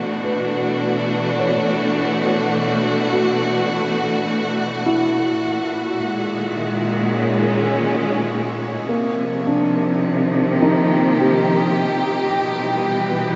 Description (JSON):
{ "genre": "ambient", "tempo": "52 BPM", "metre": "3/4", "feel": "straight", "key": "unclear", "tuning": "A4 = 440 Hz", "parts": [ { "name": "rich studio string section", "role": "sustained chords", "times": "0.0-13.4 s", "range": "A#2 to G4", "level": "-21 LUFS", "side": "equal", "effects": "none" }, { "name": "felt-muted upright piano", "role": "arpeggios", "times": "0.2-13.4 s", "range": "A#3 to C#5", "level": "-25 LUFS", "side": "equal", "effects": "diffuse ambient delay" }, { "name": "organ-like drone", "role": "drone", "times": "12.7-13.4 s", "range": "G3 to B4", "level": "-30 LUFS", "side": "equal", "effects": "ensemble chorus, built-in reverb" }, { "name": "drifting glass-harmonics texture", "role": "texture", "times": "12.4-13.4 s", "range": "none", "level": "barely audible", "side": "none", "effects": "none" } ], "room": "wet shimmer reverb, RT60 7.7 s", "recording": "nothing above 7.9 kHz", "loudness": "-19 LUFS", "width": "mono", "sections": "0.0-12.4 A section; 12.4-13.4 B section", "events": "none", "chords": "0.0 Bm7; 5.4 G#5; 8.9 D#add9; 12.4 Em" }